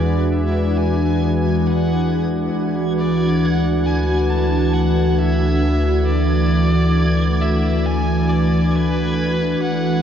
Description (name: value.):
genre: ambient.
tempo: 68 BPM.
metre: 4/4.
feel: straight.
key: unclear.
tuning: A4 = 440 Hz.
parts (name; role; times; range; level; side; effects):
bright electric violin; melody; 0.0-10.0 s; B4 to A5; -27 LUFS; equal; ping-pong delay.
glassy FM pad; sustained chords; 0.0-10.0 s; E3 to B4; -17 LUFS; equal; ensemble chorus, built-in reverb.
warm sub bass; bass; 0.0-10.0 s; C#2 to E2; -21 LUFS; equal; none.
backwards swelling texture; texture; 0.0-10.0 s; G#6; -33 LUFS; right 2 dB; built-in reverb.
room: wet huge ambient reverb, RT60 7.3 s.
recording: worn, warbling old tape, cassette tape, warbly pitch drift, nothing above 7.7 kHz.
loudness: -16 LUFS.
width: side -8 dB against mid.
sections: 0.0-10.0 A section.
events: fade-in on synth texture 0.0-10.0; fade-in on electric violin 0.0-10.0.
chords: 0.0 E9; 2.5 D69.